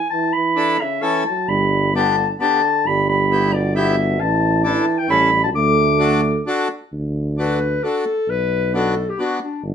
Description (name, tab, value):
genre	alpine folk, alpine dance band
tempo	132 BPM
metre	3/4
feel	rubato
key	D major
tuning	A4 = 441 Hz
part	warm clarinet	melody	0.0-9.6 s	D4 to D6	-19 LUFS	left 3 dB	none
part	warm euphonium	second line	0.1-6.4 s	B2 to A3	-22 LUFS	right 5 dB	none
part	accordion	accompaniment	0.6-9.4 s	B3 to A4	-22 LUFS	left 1 dB	none
part	mellow tuba	bass	1.5-9.7 s	G1 to D2	-21 LUFS	equal	none
room	wet studio reverb, RT60 0.6 s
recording	none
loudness	-16 LUFS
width	side -8 dB against mid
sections	0.0-6.9 A section; 6.9-9.7 B section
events	none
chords	0.1 Asus4; 1.0 A; 1.5 G; 2.9 Em/G; 4.2 Asus4; 5.1 A7; 5.5 D; 8.3 Bm